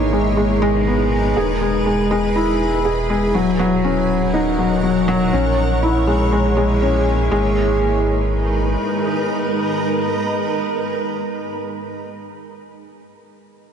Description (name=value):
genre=piano and strings electronica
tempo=121 BPM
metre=4/4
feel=straight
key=G# minor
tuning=A4 = 435 Hz
part: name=granular cloud pad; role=sustained chords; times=0.0-12.0 s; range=G#3 to F#5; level=-22 LUFS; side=right 1 dB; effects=built-in reverb
part: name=felt-muted upright piano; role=riff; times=0.0-13.7 s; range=F#3 to G#4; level=-18 LUFS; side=left 1 dB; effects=ping-pong delay
part: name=warm sub bass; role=bass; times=0.0-8.8 s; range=D#1 to A#1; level=-22 LUFS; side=equal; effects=none
room=moderate concert hall reverb, RT60 1.9 s, studio ambience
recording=nothing above 11.0 kHz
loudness=-16 LUFS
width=side -7 dB against mid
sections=0.0-7.3 A section; 7.3-11.3 B section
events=drop 0.0-7.3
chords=0.0 G#madd9; 1.4 E; 3.3 D#m7; 5.3 A#m7b5; 7.3 G#madd9